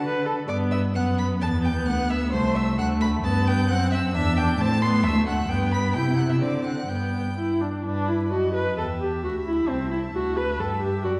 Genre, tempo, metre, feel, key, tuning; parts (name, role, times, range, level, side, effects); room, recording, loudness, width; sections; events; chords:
quick classical-period movement for string quartet; 132 BPM; 2/4; rubato; G major; A4 = 440 Hz
clear violin; melody; 0.0-11.2 s; G5 to C7; -38 LUFS; equal
clear violin; second line; 0.0-11.2 s; B4 to C6; -34 LUFS; equal
clear viola; accompaniment; 0.0-11.1 s; A3 to B4; -28 LUFS; equal
warm cello; bass; 0.0-11.2 s; C2 to D3; -27 LUFS; equal
wet scoring stage reverb, RT60 1.7 s; heard from further back in the room, vinyl crackle; -24 LUFS; mono
0.5-7.9 A section; 7.9-11.2 B section
0.5 G; 1.0 B5/F#; 1.4 E5; 2.3 Am/C; 2.8 D; 3.2 G; 4.1 Em7; 4.6 Am; 5.0 D; 5.5 G; 6.0 C; 6.4 D7; 6.9 G; 8.3 B7/F#; 8.8 Em; 9.7 Am/C; 10.1 D; 10.6 G